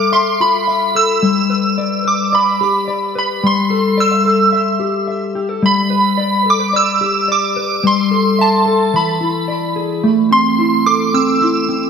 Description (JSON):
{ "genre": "dream pop", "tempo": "109 BPM", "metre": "4/4", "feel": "straight", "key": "G mixolydian", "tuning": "A4 = 444 Hz", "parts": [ { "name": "shimmering bell with halo", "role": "melody", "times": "0.0-11.9 s", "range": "A5 to E6", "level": "-15 LUFS", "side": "right 2 dB", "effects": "ensemble chorus, phaser, ping-pong delay" }, { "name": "mellow electric guitar", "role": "arpeggios", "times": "0.0-11.9 s", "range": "E3 to E5", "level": "-16 LUFS", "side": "left 2 dB", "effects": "wide subtle chorus, ping-pong delay" } ], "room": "wet lush hall reverb, RT60 2.1 s", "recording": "none", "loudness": "-12 LUFS", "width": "side -6 dB against mid", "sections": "0.0-10.0 A section; 10.0-11.9 B section", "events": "none", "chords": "0.0 Fmaj7/G; 1.2 G; 3.4 Am7/G; 5.6 G; 7.8 Am7/G; 8.9 E7; 10.0 Am" }